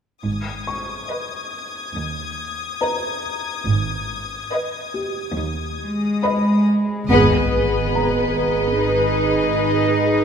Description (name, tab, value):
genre	cinematic, suspense film score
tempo	70 BPM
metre	4/4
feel	straight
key	G# harmonic minor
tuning	A4 = 439 Hz
part	warm studio cello section	bass	0.2-10.2 s	D#2 to D#4	-21 LUFS	equal	none
part	warm studio double bass section	bass	0.2-10.2 s	G#1	-24 LUFS	right 5 dB	none
part	dark chamber violin section	texture	0.2-6.6 s	D#6 to G#6	-29 LUFS	left 6 dB	none
part	felt-muted upright piano	texture	0.7-10.2 s	G4 to C#6	-30 LUFS	left 2 dB	none
part	dark studio violin section	second line	1.1-10.2 s	B4 to D#5	-23 LUFS	left 1 dB	none
part	clear studio violin section	melody	7.1-10.2 s	D#5	-28 LUFS	left 3 dB	none
part	dark studio viola section	accompaniment	7.1-10.2 s	G#4	-22 LUFS	right 1 dB	none
part	sub drop	sound effects	7.1-10.2 s	none	-26 LUFS	left 2 dB	none
room	moderate concert hall reverb, RT60 1.9 s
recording	none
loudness	-18 LUFS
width	side -7 dB against mid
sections	0.2-7.1 A section; 7.1-10.2 B section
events	band accent 7.1-8.0; impact 7.1-10.2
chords	0.2 G#m